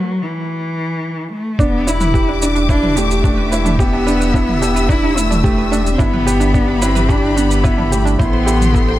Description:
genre	piano and strings electronica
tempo	109 BPM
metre	4/4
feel	straight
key	E minor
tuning	A4 = 440 Hz
part	dark cello	melody	0.0-9.0 s	E3 to E4	-19 LUFS	left 1 dB	none
part	warm symphonic string section	sustained chords	1.6-9.0 s	G4 to E6	-23 LUFS	left 3 dB	sidechain pumping
part	analog pluck	arpeggios	1.6-8.9 s	D4 to C5	-25 LUFS	right 6 dB	chorus, sidechain pumping, digital delay
part	felt-muted upright piano	riff	1.6-9.0 s	D4 to A4	-20 LUFS	right 1 dB	none
part	warm sub bass	bass	1.6-9.0 s	E1 to A1	-19 LUFS	equal	sidechain pumping, high-pass filter
part	electronic kick drum	drums	1.6-8.9 s	none	-16 LUFS	equal	none
part	electronic shaker and toms	drums	1.6-8.9 s	none	-24 LUFS	right 1 dB	overdrive
room	light reverb, small room ambience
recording	none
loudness	-13 LUFS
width	side -14 dB against mid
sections	0.0-1.6 A section; 1.6-9.0 B section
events	break 0.0-1.6; build-up 0.0-1.6; drop 1.6-9.0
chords	0.0 N.C.; 1.6 Em7; 6.0 G6; 8.2 Am7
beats	0.49 1.04 | 1.59 2.14 2.69 3.24 | 3.79 4.34 4.89 5.44 | 5.99 6.54 7.09 7.64 | 8.20 8.75

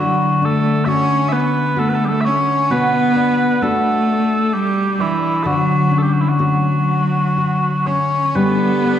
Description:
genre	celtic folk, Celtic slow air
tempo	59-68 BPM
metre	3/4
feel	rubato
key	unclear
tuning	A4 = 440 Hz
part	mellow small bagpipes	melody	0.0-9.0 s	E4 to E5	-19 LUFS	equal	none
part	bright cello	second line	0.0-9.0 s	E3 to C#4	-19 LUFS	right 1 dB	none
part	nylon-string guitar	accompaniment	0.0-9.0 s	B2 to G4	-18 LUFS	left 2 dB	none
part	clear symphonic string section	sustained chords	8.4-9.0 s	A3 to A4	-26 LUFS	right 1 dB	none
room	wet scoring stage reverb, RT60 1.8 s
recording	heard from further back in the room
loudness	-14 LUFS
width	side -10 dB against mid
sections	0.0-9.0 A section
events	none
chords	0.0 D; 2.7 Bm7; 5.5 Dmaj7; 8.4 Gsus2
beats	0.87 1.78 | 2.70 3.62 4.53 | 5.46 6.39 7.37 | 8.36

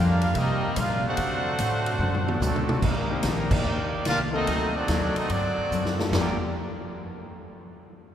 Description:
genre	jazz, big band swing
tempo	146 BPM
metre	4/4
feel	swing 67% on 8ths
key	G minor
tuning	A4 = 440 Hz
part	clear trumpet section	melody	0.0-6.4 s	F#3 to G5	-29 LUFS	right 1 dB	none
part	muted trombone section	second line	0.0-6.4 s	G2 to F#4	-32 LUFS	right 2 dB	none
part	picked steel-string acoustic guitar	accompaniment	0.0-6.4 s	G2 to F#4	-32 LUFS	left 3 dB	none
part	clear trombone section	sustained chords	0.0-2.8 s	C3 to F4	-40 LUFS	left 1 dB	none
part	upright bass	bass	0.0-6.4 s	G1 to D3	-29 LUFS	equal	none
part	swinging big-band drum kit	drums	0.2-6.3 s	crash cymbal, hi-hat, kick drum, ride cymbal, snare drum, splash cymbal, toms	-29 LUFS	equal	none
part	dark baby grand piano	accompaniment	3.1-6.4 s	Eb3 to D5	-35 LUFS	left 2 dB	none
room	wet cathedral reverb, RT60 4.5 s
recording	recorded in a church or concert hall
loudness	-23 LUFS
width	side -10 dB against mid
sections	0.0-2.8 A section; 2.8-6.1 B section; 6.1-7.8 C section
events	drum fill 2.0-2.8, 5.7-6.1; band accent 3.4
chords	0.4 Cm7; 1.2 D7; 2.8 Cm9; 4.5 D7b9; 6.1 Gm7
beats	0.36 0.77 | 1.18 1.59 2.00 2.42 | 2.83 3.24 3.65 4.06 | 4.47 4.89 5.30 5.71 | 6.12

